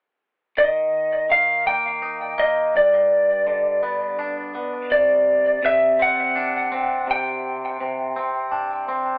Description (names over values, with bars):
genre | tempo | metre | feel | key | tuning
rock | 55 BPM (dotted quarters) | 6/8 | straight | unclear | A4 = 440 Hz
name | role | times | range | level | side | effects
lightly driven lead guitar | melody | 0.6-8.5 s | D5 to G5 | -21 LUFS | equal | tape echo
twangy electric guitar | arpeggios | 0.6-9.2 s | G2 to Eb4 | -29 LUFS | equal | phaser, tape echo
room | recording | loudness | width
wet booth ambience, RT60 0.2 s | telephone sound | -21 LUFS | mono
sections
0.6-9.2 A section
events
none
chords
0.6 Eb; 2.7 G; 4.9 Csus2